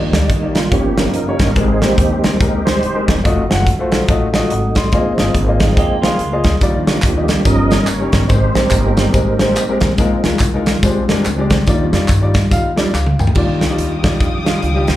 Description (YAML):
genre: uptempo gospel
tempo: 142 BPM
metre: 4/4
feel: swing 61% on 8ths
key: Eb major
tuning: A4 = 440 Hz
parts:
  - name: warm upright piano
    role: accompaniment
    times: 0.0-15.0 s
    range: G2 to Eb6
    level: -18 LUFS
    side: left 3 dB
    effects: none
  - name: tonewheel organ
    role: sustained chords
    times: 0.0-15.0 s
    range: Eb3 to Eb5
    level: -20 LUFS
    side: right 3 dB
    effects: slow rotary speaker, chorus vibrato
  - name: upright bass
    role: bass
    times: 0.0-15.0 s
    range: Eb1 to G2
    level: -19 LUFS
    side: equal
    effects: none
  - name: modern studio drum kit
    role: drums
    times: 0.1-15.0 s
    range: crash cymbal, hi-hat, kick drum, snare drum, toms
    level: -16 LUFS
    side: equal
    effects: none
  - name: clean electric guitar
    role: second line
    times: 5.6-6.6 s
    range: G3 to G4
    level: -24 LUFS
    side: right 5 dB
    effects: slapback echo
  - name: tambourine and handclaps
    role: percussion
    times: 6.6-13.3 s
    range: none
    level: -28 LUFS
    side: equal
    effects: slapback echo
  - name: warm studio string section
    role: sustained chords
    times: 13.4-15.0 s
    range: F5 to Eb6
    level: -26 LUFS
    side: left 2 dB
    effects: none
room: light reverb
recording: live gig heard through the venue's PA, club reverb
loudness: -12 LUFS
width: side -14 dB against mid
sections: 0.0-13.4 A section; 13.4-15.0 B section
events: tonewheel organ solo 0.0-13.4; drum fill 12.9-13.4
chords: 0.0 Ebmaj7; 0.7 Eb7/G; 1.6 Abmaj9; 3.2 F7b9; 4.9 Bb7sus4; 6.6 Ebmaj9; 7.5 Eb7/G; 8.3 Abmaj9; 10.0 Bb7sus4; 10.8 Bb13; 11.7 Ebmaj9